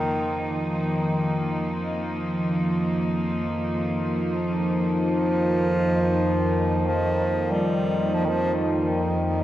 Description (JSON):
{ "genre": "dark ambient drone", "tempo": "47 BPM", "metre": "4/4", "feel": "straight", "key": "unclear", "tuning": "A4 = 441 Hz", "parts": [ { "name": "clear bass clarinet", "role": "melody", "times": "0.0-9.4 s", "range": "Eb3 to G3", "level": "-26 LUFS", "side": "equal", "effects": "tape echo" }, { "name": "rich chamber cello section", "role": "sustained chords", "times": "0.0-9.4 s", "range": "F3 to Eb4", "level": "-29 LUFS", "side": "equal", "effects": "none" }, { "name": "analog drone", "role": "drone", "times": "0.0-9.4 s", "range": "F2 to Eb3", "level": "-24 LUFS", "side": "equal", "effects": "chorus, phaser" }, { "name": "metallic inharmonic drone", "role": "texture", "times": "4.0-9.4 s", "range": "F4", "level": "-44 LUFS", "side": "left 1 dB", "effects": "none" } ], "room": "wet cathedral reverb, RT60 5.4 s", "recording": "worn, warbling old tape, cassette tape, warbly pitch drift", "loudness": "-22 LUFS", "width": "side -13 dB against mid", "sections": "0.0-9.4 A section", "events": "none", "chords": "0.0 F7sus4", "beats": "0.51 1.79 3.07 | 4.34 5.62 6.90 8.17" }